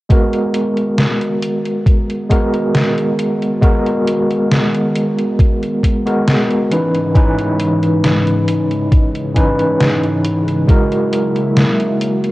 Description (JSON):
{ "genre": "vaporwave", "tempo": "68 BPM", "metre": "4/4", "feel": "straight", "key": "G# minor", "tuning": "A4 = 439 Hz", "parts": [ { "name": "overdriven tine electric piano", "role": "accompaniment", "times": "0.1-12.3 s", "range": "E3 to B4", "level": "-15 LUFS", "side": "equal", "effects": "fast tremolo, wide subtle chorus, analog delay" }, { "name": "lush unison pad", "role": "sustained chords", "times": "0.1-12.3 s", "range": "G#2 to A#4", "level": "-22 LUFS", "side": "equal", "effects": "chorus, phaser" }, { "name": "electronic kick drum", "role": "drums", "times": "0.1-10.9 s", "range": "none", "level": "-12 LUFS", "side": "equal", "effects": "overdrive, vintage 12-bit sampler grit" }, { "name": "gated 80s digital drum machine", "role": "drums", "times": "0.1-12.3 s", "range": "hi-hat, snare drum", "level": "-18 LUFS", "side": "equal", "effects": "gated reverb, gated reverb snare, overdrive, vintage 12-bit sampler grit" } ], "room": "light reverb, digital ambience", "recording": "worn, warbling old tape, cassette tape, warbly pitch drift", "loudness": "-13 LUFS", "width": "side -18 dB against mid", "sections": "0.1-12.3 A section", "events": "filter sweep on analog synth pad 0.1-12.3", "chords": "0.1 G#m9; 6.7 C#m9/G#; 10.7 F#9" }